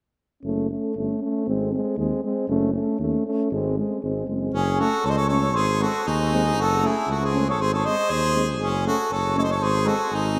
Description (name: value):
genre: balkan folk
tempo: 118 BPM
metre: 2/4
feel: straight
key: F# dorian sharp4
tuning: A4 = 440 Hz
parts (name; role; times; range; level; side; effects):
- mellow euphonium; accompaniment; 0.4-10.4 s; B#3 to C#4; -32 LUFS; equal; none
- warm trombone; accompaniment; 0.4-10.4 s; G#3 to A3; -31 LUFS; equal; none
- dark tuba; bass; 0.4-10.4 s; F#1 to D#2; -28 LUFS; equal; none
- clear harmonica; second line; 4.5-10.4 s; C#4 to B#4; -29 LUFS; equal; delay
- mellow flugelhorn; melody; 4.6-10.4 s; G#4 to D#5; -27 LUFS; equal; delay
room: wet lush hall reverb, RT60 3.1 s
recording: dreamy mix soaked in reverb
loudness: -23 LUFS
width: mono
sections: 0.4-4.5 A section; 4.5-10.4 B section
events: none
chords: 0.4 F#m; 1.5 G#; 2.5 F#m; 3.5 G#; 4.5 F#m; 5.5 G#; 6.6 F#m; 7.6 G#; 8.6 F#m; 9.6 G#